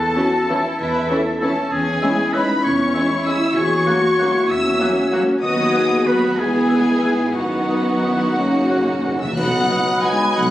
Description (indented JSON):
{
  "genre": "classical, orchestral ballroom waltz",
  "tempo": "169-208 BPM",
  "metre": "3/4",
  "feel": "rubato",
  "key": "B major",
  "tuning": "A4 = 440 Hz",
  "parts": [
    { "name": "warm symphonic violin section", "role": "melody", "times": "0.0-10.5 s", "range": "E5 to G#6", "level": "-25 LUFS", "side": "left 2 dB", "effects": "none" },
    { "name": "clear oboe", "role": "second line", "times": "0.0-10.5 s", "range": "E4 to E5", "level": "-24 LUFS", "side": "equal", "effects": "none" },
    { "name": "rich chamber double bass section", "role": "bass", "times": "0.0-10.5 s", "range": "B1 to G#2", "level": "-26 LUFS", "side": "right 1 dB", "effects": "none" },
    { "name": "warm symphonic cello section", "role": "bass", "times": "0.0-10.5 s", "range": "E3 to B4", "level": "-24 LUFS", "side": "equal", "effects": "none" },
    { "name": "dark clarinet", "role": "second line", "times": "0.2-10.5 s", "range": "A#4 to C#5", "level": "-34 LUFS", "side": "left 2 dB", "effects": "none" },
    { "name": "hollow concert flute", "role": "second line", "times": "0.2-10.5 s", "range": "B5 to F#6", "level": "-29 LUFS", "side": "left 1 dB", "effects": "none" },
    { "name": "warm symphonic violin section", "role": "second line", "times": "0.2-10.5 s", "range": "B3 to G#5", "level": "-25 LUFS", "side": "left 1 dB", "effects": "none" },
    { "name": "mellow bassoon", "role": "accompaniment", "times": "0.2-10.5 s", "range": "E3 to C#4", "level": "-31 LUFS", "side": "equal", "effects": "none" },
    { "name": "warm symphonic viola section", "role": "accompaniment", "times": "0.2-10.1 s", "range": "C#3 to D#4", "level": "-24 LUFS", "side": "right 1 dB", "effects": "none" },
    { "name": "dark French horn section", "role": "sustained chords", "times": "0.2-10.2 s", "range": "A#3 to F#4", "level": "-22 LUFS", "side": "left 1 dB", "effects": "none" },
    { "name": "cymbal swell, clash cymbals and concert bass drum", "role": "percussion", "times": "7.4-10.0 s", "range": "none", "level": "-36 LUFS", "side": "equal", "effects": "none" },
    { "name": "timpani", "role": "percussion", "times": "8.4-9.4 s", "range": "F#2", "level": "-30 LUFS", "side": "left 1 dB", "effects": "none" },
    { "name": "mellow tuba", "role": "bass", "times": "9.4-10.5 s", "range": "B1", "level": "-24 LUFS", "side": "right 1 dB", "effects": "none" }
  ],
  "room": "wet recital hall reverb, RT60 1.6 s",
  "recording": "recorded on a phone in the room, club reverb",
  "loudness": "-16 LUFS",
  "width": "side -13 dB against mid",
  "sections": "0.0-9.4 A section; 9.4-10.5 B section",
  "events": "timpani fill 8.4-9.4; band accent 9.4-9.7",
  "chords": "0.0 A/E; 1.7 C#m/E; 3.6 F#7/E; 5.4 B/D#; 6.4 E; 7.4 B/F#; 8.4 F#; 9.4 B"
}